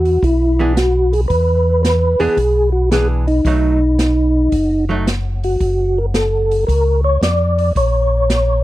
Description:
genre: soul jazz organ trio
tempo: 112 BPM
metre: 4/4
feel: swing 67% on 8ths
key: unclear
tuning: A4 = 440 Hz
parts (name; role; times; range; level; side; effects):
- percussive tonewheel organ; melody; 0.0-8.6 s; D#4 to D5; -16 LUFS; equal; slow rotary speaker, chorus vibrato
- tonewheel organ; bass; 0.0-8.6 s; F#1 to E#2; -16 LUFS; equal; chorus vibrato, stopped rotary speaker
- open jazz drum kit; drums; 0.1-8.5 s; hi-hat, kick drum, snare drum; -21 LUFS; equal; none
- archtop guitar, miked and amplified; accompaniment; 0.6-5.1 s; E3 to G#4; -21 LUFS; right 3 dB; none
room: small room ambience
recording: dry, close 1970s-style studio recording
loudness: -13 LUFS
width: side -16 dB against mid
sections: 0.0-8.6 A section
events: none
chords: 0.0 E7; 3.5 B7; 5.6 F#

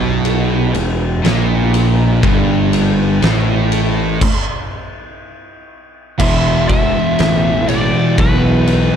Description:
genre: stoner and doom metal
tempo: 60 BPM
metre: 4/4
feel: straight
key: E minor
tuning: A4 = 440 Hz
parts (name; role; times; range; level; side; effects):
- string machine, cellos; sustained chords; 0.0-9.0 s; E3 to B4; -30 LUFS; equal; none
- crunchy overdriven guitar; riff; 0.0-9.0 s; E2 to E3; -20 LUFS; equal; none
- thick fuzz guitar; riff; 0.0-9.0 s; E2 to E3; -20 LUFS; left 8 dB; distortion
- thick fuzz guitar; riff; 0.0-9.0 s; E2 to E3; -19 LUFS; right 8 dB; distortion
- fuzz fingered electric bass; bass; 0.0-8.9 s; E1 to B1; -18 LUFS; equal; overdrive
- oversized low-tuned drum kit; drums; 0.2-8.9 s; crash cymbal, kick drum, ride cymbal, snare drum; -19 LUFS; equal; none
- fuzz lead guitar; melody; 6.2-9.0 s; B4 to E5; -18 LUFS; equal; wah, distortion
room: little or no reverb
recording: dark, warm production, faint mains hum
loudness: -12 LUFS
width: side -8 dB against mid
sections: 0.0-6.2 A section; 6.2-9.0 B section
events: stop 4.2-6.2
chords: 0.0 Em; 6.2 E5

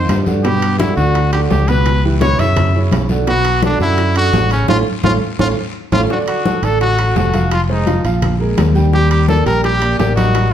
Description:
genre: latin, salsa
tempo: 170 BPM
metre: 4/4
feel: straight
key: D major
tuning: A4 = 439 Hz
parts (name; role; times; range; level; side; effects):
- clear trumpet; melody; 0.0-10.5 s; C#4 to E5; -18 LUFS; left 1 dB; none
- clear baby grand piano; accompaniment; 0.0-10.5 s; B2 to G5; -20 LUFS; right 4 dB; none
- modern bright fingered electric bass; bass; 0.0-10.5 s; F1 to G2; -16 LUFS; equal; none
- bongos; percussion; 0.1-10.5 s; none; -26 LUFS; left 7 dB; none
- congas; percussion; 0.1-10.5 s; none; -22 LUFS; left 2 dB; none
- guiro; percussion; 0.1-10.5 s; none; -35 LUFS; left 5 dB; none
- timbales; percussion; 0.1-10.5 s; none; -26 LUFS; right 6 dB; none
room: wet large studio reverb, RT60 1.0 s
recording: heard from further back in the room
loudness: -12 LUFS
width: side -10 dB against mid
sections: 0.0-6.1 A section; 6.1-10.5 B section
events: band accent 4.7-6.1; drum fill 5.0-6.1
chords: 0.4 Gmaj7; 1.9 C#m7b5; 2.6 F#5; 3.3 Bm7; 4.7 Aaug; 6.1 D; 7.5 Fm7; 8.2 Bb5; 8.9 Ebmaj7

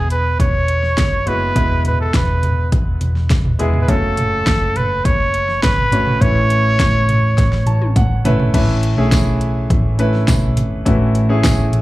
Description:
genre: piano-driven pop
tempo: 103 BPM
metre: 4/4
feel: straight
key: unclear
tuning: A4 = 440 Hz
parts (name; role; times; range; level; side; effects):
- clear trumpet; melody; 0.0-8.0 s; A4 to C#5; -19 LUFS; right 1 dB; slapback echo
- clear baby grand piano; accompaniment; 0.0-11.8 s; A2 to A5; -21 LUFS; equal; slapback echo
- hollow-body short-scale picked electric bass; bass; 0.0-11.8 s; E1 to B1; -18 LUFS; equal; none
- deep house drum kit; drums; 0.1-11.8 s; crash cymbal, hi-hat, kick drum, snare drum, toms; -18 LUFS; equal; overdrive
- tambourine; percussion; 9.1-11.6 s; none; -30 LUFS; left 4 dB; none
room: little or no reverb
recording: live gig heard through the venue's PA, club ambience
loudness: -13 LUFS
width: side -17 dB against mid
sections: 0.0-8.5 A section; 8.5-11.8 B section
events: drum fill 7.4-8.5; grand piano fill 7.4-8.5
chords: 0.0 E; 3.9 F#m; 6.2 Aadd9

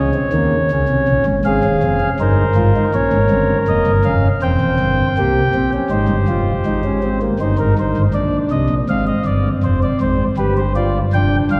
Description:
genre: classical, baroque-style 4-part fugue for pipe organ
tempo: 81 BPM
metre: 4/4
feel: straight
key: F minor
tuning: A4 = 438 Hz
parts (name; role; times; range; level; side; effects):
- chamber organ, principal; solo; 0.0-11.6 s; Eb1 to G5; -16 LUFS; equal; none
room: wet church reverb, RT60 3.1 s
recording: recorded in a church or concert hall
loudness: -16 LUFS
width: mono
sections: 0.0-1.4 A section; 1.4-11.6 B section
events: none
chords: 0.0 Bbm/Db; 1.4 Fm; 2.9 Gm7b5; 4.4 C7/E; 5.9 Fm; 7.4 Cm/G; 8.9 Dm7b5; 10.4 G7

